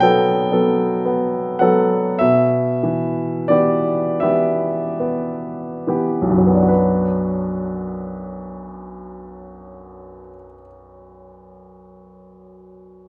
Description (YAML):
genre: classical, romantic nocturne for solo piano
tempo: 21-40 BPM (dotted quarters)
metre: 12/8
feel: rubato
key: B minor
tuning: A4 = 440 Hz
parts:
  - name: warm baby grand piano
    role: solo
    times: 0.0-13.1 s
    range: B1 to G5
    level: -19 LUFS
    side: equal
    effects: none
room: moderate recital hall reverb, RT60 1.4 s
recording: none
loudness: -18 LUFS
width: mono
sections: 0.0-6.7 A section; 6.7-13.1 B section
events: slowing down 0.0-6.7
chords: 0.0 B7; 2.2 Em/B; 6.7 Bm